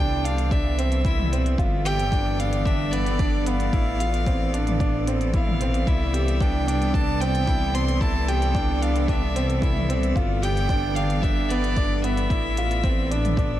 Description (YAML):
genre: piano and strings electronica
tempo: 112 BPM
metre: 4/4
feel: straight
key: C major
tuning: A4 = 441 Hz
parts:
  - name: clear violin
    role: melody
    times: 0.0-13.6 s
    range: D5 to C6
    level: -29 LUFS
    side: equal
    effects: analog delay
  - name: bright string quartet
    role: sustained chords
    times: 0.0-13.6 s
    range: E3 to D5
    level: -31 LUFS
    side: equal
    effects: sidechain pumping
  - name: warm baby grand piano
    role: riff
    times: 0.0-13.6 s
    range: B3 to G4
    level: -28 LUFS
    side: right 1 dB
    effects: analog delay
  - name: dark detuned saw bass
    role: bass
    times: 0.0-13.6 s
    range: G1 to C2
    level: -24 LUFS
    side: equal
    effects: sidechain pumping
  - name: minimal click drum kit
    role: drums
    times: 0.3-13.5 s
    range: hi-hat, toms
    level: -35 LUFS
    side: equal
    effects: none
  - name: electronic kick drum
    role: drums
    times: 0.5-13.5 s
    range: none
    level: -24 LUFS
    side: equal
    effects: overdrive
room: moderate cathedral reverb, RT60 5.2 s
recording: dreamy mix soaked in reverb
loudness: -20 LUFS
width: side -13 dB against mid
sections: 0.0-13.6 A section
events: none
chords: 0.0 Cadd9; 1.6 G7; 3.7 Fmaj7/A; 5.9 Cadd9; 10.2 G; 12.3 Fmaj7/A